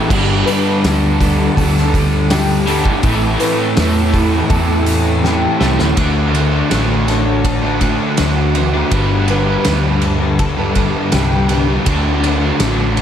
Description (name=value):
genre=rock, shoegaze and dream pop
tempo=82 BPM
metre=4/4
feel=straight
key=G major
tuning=A4 = 439 Hz
part: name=fingerpicked twelve-string acoustic guitar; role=arpeggios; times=0.0-13.0 s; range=F#4 to B4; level=-24 LUFS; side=left 2 dB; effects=analog chorus, slapback echo
part: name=crunchy overdriven guitar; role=riff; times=0.0-13.0 s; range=G2 to D4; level=-21 LUFS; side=equal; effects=harmonic tremolo
part: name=overdriven semi-hollow guitar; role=riff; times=0.0-13.0 s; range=D3 to C5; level=-20 LUFS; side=right 9 dB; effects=reverse reverb
part: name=thick fuzz guitar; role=riff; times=0.0-13.0 s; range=G2 to D4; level=-19 LUFS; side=left 8 dB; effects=distortion, analog chorus
part: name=vintage muted fingered electric bass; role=bass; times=0.1-13.0 s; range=G1 to E2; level=-18 LUFS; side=equal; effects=none
part: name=loose indie drum kit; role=drums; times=0.1-13.0 s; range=crash cymbal, hi-hat, kick drum, ride cymbal, snare drum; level=-20 LUFS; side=equal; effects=none
room=light reverb, small room ambience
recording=none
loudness=-12 LUFS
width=side -9 dB against mid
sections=0.0-6.0 A section; 6.0-13.0 B section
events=drum fill 5.2-6.0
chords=0.1 Gsus2; 3.0 Am7; 6.0 D7; 8.9 G; 11.9 D7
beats=| 0.10 0.83 1.56 2.30 | 3.03 3.77 4.50 5.24 | 5.97 6.71 7.44 8.18 | 8.92 9.65 10.39 11.13 | 11.87 12.61